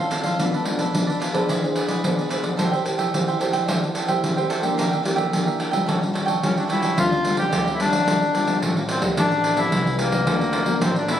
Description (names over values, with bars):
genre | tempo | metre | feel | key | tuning
samba and choro | 109 BPM | 4/4 | straight | D minor | A4 = 440 Hz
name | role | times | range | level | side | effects
cavaquinho | accompaniment | 0.0-7.0 s | D4 to G5 | -26 LUFS | right 5 dB | none
nylon-string guitar | accompaniment | 0.0-11.2 s | A2 to C5 | -25 LUFS | left 1 dB | none
pandeiro | percussion | 0.1-11.2 s | none | -23 LUFS | equal | none
accordion | melody | 6.4-11.2 s | A3 to G4 | -22 LUFS | left 2 dB | plate reverb
upright bass | bass | 7.0-11.2 s | A1 to D2 | -29 LUFS | equal | none
room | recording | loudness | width
moderate studio reverb, RT60 0.6 s | recorded on a phone in the room, studio reverb, compression | -19 LUFS | side -10 dB against mid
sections
0.0-7.0 A section; 7.0-11.2 B section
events
none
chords
0.4 Bm7b5; 1.5 E7b13; 2.6 Am7; 4.8 Em7b5; 5.9 A7b13; 7.0 Dm7; 9.2 Am9; 10.3 D7b13